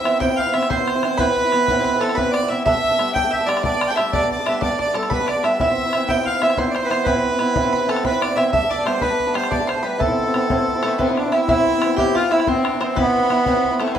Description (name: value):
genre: celtic folk, Celtic slip jig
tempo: 122 BPM (dotted quarters)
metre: 9/8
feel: straight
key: A minor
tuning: A4 = 440 Hz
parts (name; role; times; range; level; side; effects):
- accordion; melody; 0.0-13.9 s; A3 to G5; -20 LUFS; right 1 dB; none
- bluegrass banjo; second line; 0.0-14.0 s; A4 to C6; -25 LUFS; right 1 dB; none
- clear fiddle; second line; 0.0-14.0 s; A3 to G5; -28 LUFS; left 2 dB; none
- fingerpicked swing-style acoustic guitar; accompaniment; 0.0-14.0 s; A2 to E4; -21 LUFS; right 1 dB; none
- bodhran; percussion; 0.1-14.0 s; none; -28 LUFS; left 3 dB; none
room: wet studio reverb, RT60 0.9 s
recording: band playing live in one room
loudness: -16 LUFS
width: side -9 dB against mid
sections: 0.0-11.5 A section; 11.5-14.0 A section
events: none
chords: 0.0 Amadd9; 2.7 Gadd9; 5.6 Amadd9; 8.5 Gadd9; 10.0 Amadd9